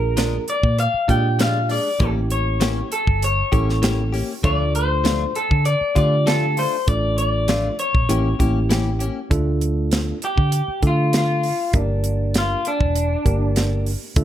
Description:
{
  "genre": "straight-eighth soul blues",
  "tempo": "99 BPM",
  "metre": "4/4",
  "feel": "straight",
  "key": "D harmonic minor",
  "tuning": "A4 = 437 Hz",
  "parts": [
    { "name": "electric guitar through a small old amp", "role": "melody", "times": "0.0-13.8 s", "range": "D4 to G5", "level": "-22 LUFS", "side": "left 2 dB", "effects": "none" },
    { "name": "tine electric piano", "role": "accompaniment", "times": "0.0-14.2 s", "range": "A3 to Bb4", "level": "-26 LUFS", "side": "right 3 dB", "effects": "none" },
    { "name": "vintage muted fingered electric bass", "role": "bass", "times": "0.0-14.2 s", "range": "E1 to D3", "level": "-21 LUFS", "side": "equal", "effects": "none" },
    { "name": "direct-recorded clean electric guitar", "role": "stabs", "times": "0.2-9.2 s", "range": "E3 to G4", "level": "-28 LUFS", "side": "left 6 dB", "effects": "lush chorus" },
    { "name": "tight funk drum kit", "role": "drums", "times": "0.2-14.2 s", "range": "hi-hat, kick drum, snare drum", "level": "-22 LUFS", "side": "equal", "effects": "none" }
  ],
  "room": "light reverb",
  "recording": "none",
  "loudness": "-17 LUFS",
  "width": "side -11 dB against mid",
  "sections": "0.0-9.3 A section; 9.3-14.2 B section",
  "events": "clean electric guitar solo 9.3-14.2",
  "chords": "0.0 Bb7; 2.0 A7b9; 4.4 Dm; 8.1 A7b9; 9.3 Dm; 11.7 Gm",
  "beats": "0.17 0.78 1.39 | 2.00 2.61 3.22 3.83 | 4.44 5.05 5.66 6.27 | 6.88 7.49 8.09 8.70 | 9.31 9.92 10.53 11.13 | 11.74 12.35 12.95 13.56 | 14.17"
}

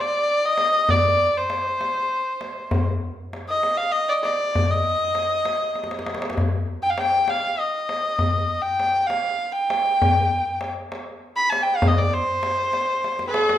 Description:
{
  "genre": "Persian modal ensemble",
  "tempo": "66 BPM (dotted quarters)",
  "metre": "6/8",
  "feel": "straight",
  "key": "C avaz esfahan",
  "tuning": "A4 = 442 Hz",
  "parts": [
    { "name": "rich kamancheh", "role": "melody", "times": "0.0-13.6 s", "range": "Ab4+46c to B5", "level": "-20 LUFS", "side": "equal", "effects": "none" },
    { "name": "tombak", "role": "percussion", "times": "0.6-13.6 s", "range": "none", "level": "-26 LUFS", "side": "left 1 dB", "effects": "none" },
    { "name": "bansuri", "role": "second line", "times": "13.3-13.6 s", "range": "Ab5+41c", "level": "-29 LUFS", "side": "right 10 dB", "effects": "none" },
    { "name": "dark symphonic violin section", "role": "second line", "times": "13.3-13.6 s", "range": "Ab4+50c", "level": "-26 LUFS", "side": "right 1 dB", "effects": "none" }
  ],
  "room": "wet recital hall reverb, RT60 1.3 s",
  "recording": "minimal, uncompressed stereo recording",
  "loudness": "-20 LUFS",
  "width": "side -11 dB against mid",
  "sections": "0.0-13.6 A section",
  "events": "drum fill 5.8-6.4, 13.0-13.6",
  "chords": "none",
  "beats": "| 0.90 1.81 | 2.72 3.63 | 4.55 5.46 | 6.37 7.28 | 8.19 9.10 | 10.01 10.92 | 11.82 12.73"
}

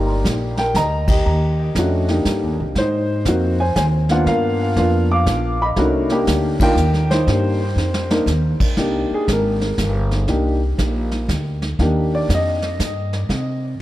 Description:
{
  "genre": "jazz piano trio",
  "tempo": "120 BPM",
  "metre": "3/4",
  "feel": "swing 66% on 8ths",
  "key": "C minor",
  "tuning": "A4 = 440 Hz",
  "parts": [
    { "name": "dark upright piano", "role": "melody", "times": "0.0-13.1 s", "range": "A3 to D6", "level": "-20 LUFS", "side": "left 1 dB", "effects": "diffuse ambient delay" },
    { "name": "upright bass", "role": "bass", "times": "0.0-13.8 s", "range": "G1 to C3", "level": "-20 LUFS", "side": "equal", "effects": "none" },
    { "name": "vintage brush drum kit", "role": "drums", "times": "0.2-13.8 s", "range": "brushed snare drum, crash cymbal, hi-hat, kick drum, ride cymbal, snare drum", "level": "-23 LUFS", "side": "equal", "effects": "none" }
  ],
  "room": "light reverb, studio reverb",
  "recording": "none",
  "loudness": "-16 LUFS",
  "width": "side -15 dB against mid",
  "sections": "0.0-8.8 A section; 8.8-13.8 B section",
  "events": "band accent 1.0, 6.5; drum fill 7.8-8.3; upright piano solo 8.8-13.8",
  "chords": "0.0 Cm7 (rootless); 2.8 Ab7; 4.3 G7#9; 5.8 Cm7",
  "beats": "0.26 0.76 | 1.26 1.76 2.26 | 2.77 3.27 3.77 | 4.27 4.77 5.27 | 5.78 6.28 6.78 | 7.28 7.78 8.28 | 8.79 9.29 9.79 | 10.29 10.79 11.29 | 11.79 12.29 12.80 | 13.30 13.80"
}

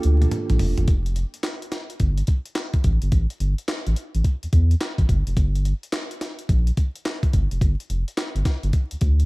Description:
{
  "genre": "R&B, new jack swing",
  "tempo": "107 BPM",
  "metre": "4/4",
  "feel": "swing 64% on 16ths",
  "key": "G dorian",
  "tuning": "A4 = 442 Hz",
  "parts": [
    { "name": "mellow tine electric piano", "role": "accompaniment", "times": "0.0-0.9 s", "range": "Bb3 to A4", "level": "-28 LUFS", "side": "right 5 dB", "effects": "medium stereo tremolo" },
    { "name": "round analog bass", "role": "bass", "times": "0.0-9.2 s", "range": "F1 to E2", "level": "-20 LUFS", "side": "equal", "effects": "none" },
    { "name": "breakbeat sampler-style drum kit", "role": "drums", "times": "0.0-9.3 s", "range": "handclaps, hi-hat, kick drum, snare drum, toms", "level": "-22 LUFS", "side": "equal", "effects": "none" }
  ],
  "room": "little or no reverb",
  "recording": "vinyl crackle",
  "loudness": "-20 LUFS",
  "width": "side -24 dB against mid",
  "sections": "0.9-9.3 A section",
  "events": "drum fill 0.0-0.9",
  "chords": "0.0 Gm9; 0.9 Fsus2; 2.8 A5; 5.4 G5",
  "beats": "0.32 | 0.88 1.44 2.00 2.56 | 3.12 3.68 4.24 4.80 | 5.37 5.93 6.49 7.05 | 7.61 8.17 8.73"
}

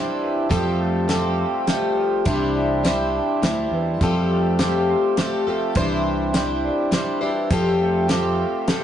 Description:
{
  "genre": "folk rock and heartland rock",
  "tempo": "103 BPM",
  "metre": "3/4",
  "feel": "straight",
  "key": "unclear",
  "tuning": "A4 = 442 Hz",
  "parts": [
    { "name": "picked plugged-in twelve-string acoustic guitar", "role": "accompaniment", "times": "0.0-8.8 s", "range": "C3 to C5", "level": "-22 LUFS", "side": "left 3 dB", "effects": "none" },
    { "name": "hand-pumped harmonium", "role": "sustained chords", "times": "0.0-8.8 s", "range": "A3 to G4", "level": "-29 LUFS", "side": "right 5 dB", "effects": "none" },
    { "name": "electric guitar through a small old amp", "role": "riff", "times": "0.0-8.8 s", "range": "C3 to G4", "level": "-28 LUFS", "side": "right 4 dB", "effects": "phaser" },
    { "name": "fingered electric bass", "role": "bass", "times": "0.5-8.4 s", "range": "C2 to F2", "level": "-25 LUFS", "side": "right 1 dB", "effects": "none" },
    { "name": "damped 70s drum kit", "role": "drums", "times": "0.5-8.8 s", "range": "hi-hat, kick drum, snare drum", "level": "-23 LUFS", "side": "equal", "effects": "none" }
  ],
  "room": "moderate small room reverb, RT60 0.5 s",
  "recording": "rough rehearsal-room recording, nothing above 10.7 kHz",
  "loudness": "-18 LUFS",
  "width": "side -10 dB against mid",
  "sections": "0.0-8.8 A section",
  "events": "none",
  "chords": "0.0 Cadd9; 0.5 Fadd9; 2.3 Cadd9; 4.0 Fadd9; 5.8 Cadd9; 7.5 Fadd9",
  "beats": "| 0.51 1.09 1.67 | 2.26 2.84 3.42 | 4.01 4.59 5.17 | 5.76 6.34 6.92 | 7.50 8.09 8.67"
}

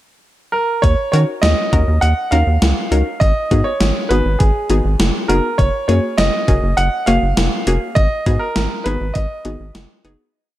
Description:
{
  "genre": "synth-pop",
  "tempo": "101 BPM",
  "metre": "4/4",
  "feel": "straight",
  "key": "unclear",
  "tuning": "A4 = 439 Hz",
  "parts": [
    { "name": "bright concert grand piano", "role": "melody", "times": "0.5-9.7 s", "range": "Ab4 to Gb5", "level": "-20 LUFS", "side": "right 2 dB", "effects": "analog delay" },
    { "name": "rubbery square bass", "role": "bass", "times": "0.8-10.2 s", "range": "F1 to Eb3", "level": "-17 LUFS", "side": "equal", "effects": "none" },
    { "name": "gated 80s digital drum machine", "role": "drums", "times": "0.8-10.2 s", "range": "hi-hat, kick drum, snare drum", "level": "-18 LUFS", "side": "equal", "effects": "gated reverb, gated reverb snare, overdrive" },
    { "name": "analog pluck", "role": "accompaniment", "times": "1.1-10.3 s", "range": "Bb3 to Bb4", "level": "-21 LUFS", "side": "left 2 dB", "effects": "chorus" }
  ],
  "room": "light reverb, digital ambience",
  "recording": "dark, warm production",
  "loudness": "-14 LUFS",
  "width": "side -14 dB against mid",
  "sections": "0.0-0.8 pickup bar; 0.8-10.3 verse",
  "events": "fade-out 8.0-10.3",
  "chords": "0.0 N.C.; 0.8 Ebm7; 3.2 Abm7; 5.6 Gbadd9; 8.0 Abm7",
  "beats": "0.24 | 0.84 1.43 2.02 2.62 | 3.21 3.81 4.40 5.00 | 5.59 6.18 6.78 7.37 | 7.97 8.56 9.15 9.75"
}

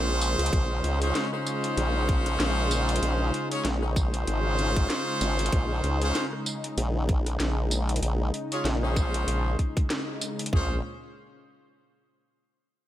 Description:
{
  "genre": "glitch hop",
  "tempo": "96 BPM",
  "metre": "4/4",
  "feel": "swing 57% on 16ths",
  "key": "Bb minor",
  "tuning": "A4 = 442 Hz",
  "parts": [
    { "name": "warm analog pad", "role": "sustained chords", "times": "0.0-10.8 s", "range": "Bb2 to Eb4", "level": "-34 LUFS", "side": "left 1 dB", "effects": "chorus, sidechain pumping" },
    { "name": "brilliant horn section", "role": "stabs", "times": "0.0-10.8 s", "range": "Db4 to Db5", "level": "-30 LUFS", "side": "equal", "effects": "sidechain pumping, tape echo" },
    { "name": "formant-sweep wobble bass", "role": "bass", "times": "0.0-10.8 s", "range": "Ab1 to Db2", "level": "-26 LUFS", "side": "equal", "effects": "chorus" },
    { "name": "drum and bass drum kit", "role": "drums", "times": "0.2-10.6 s", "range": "hi-hat, rim click, snare drum, tambourine", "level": "-32 LUFS", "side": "equal", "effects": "none" },
    { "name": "drum and bass drum kit", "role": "drums", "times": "0.5-10.7 s", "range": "kick drum, toms", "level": "-25 LUFS", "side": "equal", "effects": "none" }
  ],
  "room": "digital ambience",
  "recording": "none",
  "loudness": "-24 LUFS",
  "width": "side -12 dB against mid",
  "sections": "0.0-10.5 A section; 10.5-12.9 B section",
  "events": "drop 0.0-10.5; band accent 9.9-10.2",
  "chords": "0.0 Bbm7",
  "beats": "| 0.53 1.15 1.78 2.40 | 3.03 3.65 4.28 4.90 | 5.53 6.15 6.78 7.40 | 8.03 8.65 9.28 9.90 | 10.53"
}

